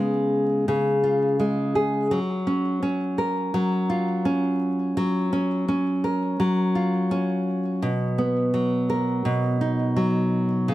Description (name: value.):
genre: folktronica.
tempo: 84 BPM.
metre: 4/4.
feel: straight.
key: F# major.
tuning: A4 = 441 Hz.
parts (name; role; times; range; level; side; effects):
nylon-string guitar; solo; 0.0-10.7 s; B2 to A#4; -21 LUFS; equal; none.
room: moderate studio reverb, RT60 0.5 s.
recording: vinyl crackle.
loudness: -21 LUFS.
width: side -15 dB against mid.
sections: 0.0-2.1 A section; 2.1-10.7 B section.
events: none.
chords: 0.0 C#7; 2.1 F#maj7; 7.8 Bmaj7.